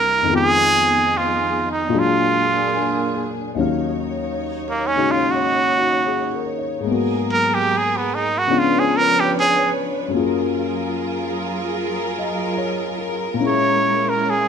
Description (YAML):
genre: jazz ballad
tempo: 73 BPM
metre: 4/4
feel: swing 69% on 8ths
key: Eb minor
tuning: A4 = 439 Hz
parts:
  - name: trumpet with straight mute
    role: melody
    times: 0.0-14.5 s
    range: Bb3 to Db5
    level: -17 LUFS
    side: right 3 dB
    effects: none
  - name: dark concert grand piano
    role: accompaniment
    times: 0.0-14.5 s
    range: C2 to F5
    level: -22 LUFS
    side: left 6 dB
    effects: none
  - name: warm studio string section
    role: sustained chords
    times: 0.0-14.5 s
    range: F3 to Db5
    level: -25 LUFS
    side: right 2 dB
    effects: none
room: light reverb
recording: none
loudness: -17 LUFS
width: side -7 dB against mid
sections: 0.0-3.6 A section; 3.6-14.5 B section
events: muted trumpet solo 3.6-14.5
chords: 0.3 Fm7b5; 1.9 Bb7b13; 3.6 Ebm9; 6.9 Abm9; 8.5 Db7b9; 10.1 Gbmaj9; 13.4 Bbm7b5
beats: | 0.28 1.10 1.92 2.75 | 3.58 4.40 5.23 6.05 | 6.87 7.68 8.50 9.31 | 10.13 10.95 11.77 12.59 | 13.40 14.22